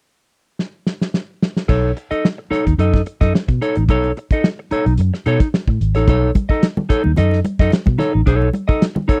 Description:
funk; 110 BPM; 4/4; straight; B mixolydian; A4 = 440 Hz
warm soul drum kit; drums; 0.6-9.2 s; crash cymbal, hi-hat, kick drum, snare drum; -19 LUFS; equal; vintage 12-bit sampler grit
clean electric guitar; accompaniment; 1.7-9.2 s; D#4 to D#5; -21 LUFS; equal
vintage muted fingered electric bass; bass; 1.7-9.1 s; G#1 to B2; -19 LUFS; equal
congas; percussion; 6.3-9.1 s; -25 LUFS; equal
little or no reverb; dry, close 1970s-style studio recording; -17 LUFS; mono
0.0-1.7 A section; 1.7-6.1 B section; 6.1-9.2 C section
drum fill 0.6-1.7
0.0 N.C.; 1.7 B9
0.05 0.59 1.14 | 1.69 2.24 2.79 3.34 | 3.89 4.43 4.98 5.53 | 6.08 6.62 7.17 7.72 | 8.26 8.81

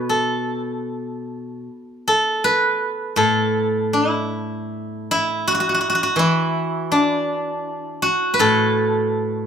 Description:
chinese traditional, Chinese solo plucked strings; 80 BPM; 4/4; rubato; A zhi mode; A4 = 438 Hz
steel-string zither; solo; 0.0-9.5 s; A2 to B4; -18 LUFS; equal
moderate large studio reverb, RT60 0.8 s; band playing live in one room; -18 LUFS; side -7 dB against mid
0.0-9.5 A section
0.09 0.88 | 1.67 2.44 3.19 3.95 | 4.71 5.45 6.18 6.92 | 7.66 8.41 9.18

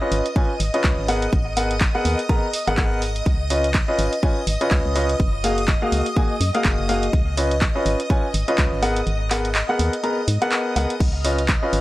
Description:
piano house; 124 BPM; 4/4; swing 58% on 16ths; Db mixolydian; A4 = 440 Hz
string machine, violins; sustained chords; 0.0-11.8 s; Eb5 to F6; -29 LUFS; equal; ensemble chorus, sidechain pumping
clear upright piano; riff; 0.0-11.8 s; Bb3 to Bb5; -22 LUFS; equal; sidechain pumping, tape echo
organ-like FM bass; bass; 0.1-11.8 s; Gb1 to Ab2; -23 LUFS; equal; sidechain pumping
punchy analog drum machine; drums; 0.1-11.8 s; crash cymbal, handclaps, hi-hat; -26 LUFS; equal
electronic kick drum; drums; 0.4-11.6 s; -20 LUFS; equal
light reverb; dry, gritty hardware recording; -18 LUFS; side -17 dB against mid
0.0-11.8 A section
kick drops out 9.1-11.0
0.0 Db9; 1.1 Abm9; 3.3 Db9; 5.2 Gbmaj9; 7.1 Db9; 8.8 Abm9; 11.0 Db9
0.36 0.84 | 1.33 1.81 2.29 2.78 | 3.26 3.75 4.23 4.71 | 5.20 5.68 6.17 6.65 | 7.13 7.62 8.10 8.58 | 9.07 9.55 10.04 10.52 | 11.00 11.49

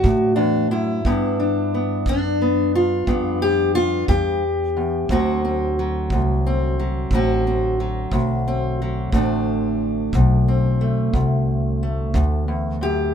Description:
acoustic country blues, solo or duo; 60 BPM (dotted quarters); 12/8; straight; D mixolydian; A4 = 445 Hz
fingerpicked steel-string acoustic guitar; melody; 0.0-13.1 s; D2 to G4; -20 LUFS; equal
upright bass; bass; 0.0-13.1 s; A1 to A2; -22 LUFS; equal
kick drum; drums; 0.0-12.3 s; -24 LUFS; right 1 dB
little or no reverb; minimal, uncompressed stereo recording; -18 LUFS; side -8 dB against mid
0.0-13.1 A section
0.0 D7; 1.1 G7; 5.1 D7
0.05 | 1.06 2.07 3.08 4.09 | 5.10 6.11 7.11 8.12 | 9.13 10.13 11.14 12.15

